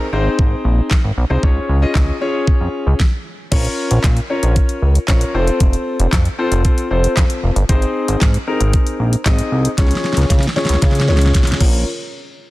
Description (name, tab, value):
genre	dance-pop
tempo	115 BPM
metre	4/4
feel	straight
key	Bb minor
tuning	A4 = 439 Hz
part	warm concert grand piano	accompaniment	0.0-11.8 s	C4 to Eb5	-20 LUFS	left 2 dB	sidechain pumping, low-pass filter
part	chorused synth bass	bass	0.1-11.8 s	F1 to Db3	-16 LUFS	equal	sidechain pumping
part	pop drum kit	drums	0.4-11.7 s	crash cymbal, handclaps, hi-hat, kick drum, snare drum	-16 LUFS	equal	none
room	little or no reverb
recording	dense, heavily limited modern master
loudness	-13 LUFS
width	side -18 dB against mid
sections	0.0-3.5 A section; 3.5-11.9 B section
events	stop 3.0-3.5; filter sweep on grand piano 3.5-11.9; drum fill 9.8-11.9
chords	0.0 Ab; 1.4 Db; 3.5 Bbm; 5.3 F; 7.7 Ab; 9.8 Db; 11.6 Bbm; 11.9 N.C.